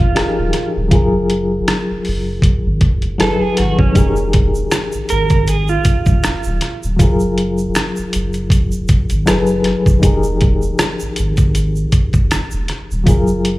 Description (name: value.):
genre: R&B, neo-soul.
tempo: 79 BPM.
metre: 4/4.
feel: swing 55% on 16ths.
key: F phrygian.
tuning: A4 = 435 Hz.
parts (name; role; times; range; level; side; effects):
electric guitar at the edge of break-up; second line; 0.0-6.8 s; Db4 to Bb4; -21 LUFS; right 6 dB; vibrato effect, slapback echo.
reed electric piano; accompaniment; 0.0-13.6 s; F3 to Cb5; -18 LUFS; left 2 dB; tremolo, slapback echo.
saturated sub bass; bass; 0.0-13.6 s; Eb1 to Ab1; -19 LUFS; equal; none.
boom bap sampler-style drum kit; drums; 0.2-13.6 s; hi-hat, kick drum, rim click; -15 LUFS; equal; none.
tube shaker and finger snaps; percussion; 4.0-13.4 s; none; -30 LUFS; right 3 dB; none.
room: little or no reverb.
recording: live gig heard through the venue's PA, club reverb.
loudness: -13 LUFS.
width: side -18 dB against mid.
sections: 0.0-13.6 A section.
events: none.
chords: 0.0 Fm11; 0.9 Gbmaj9; 3.2 Gbm11; 4.0 Fm11; 7.0 Gbmaj9; 9.3 Gbm11; 10.0 Fm11; 13.1 Gbmaj9.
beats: 0.16 | 0.92 1.68 2.44 3.19 | 3.95 4.71 5.47 6.23 | 6.99 7.75 8.51 9.27 | 10.03 10.79 11.55 12.31 | 13.07.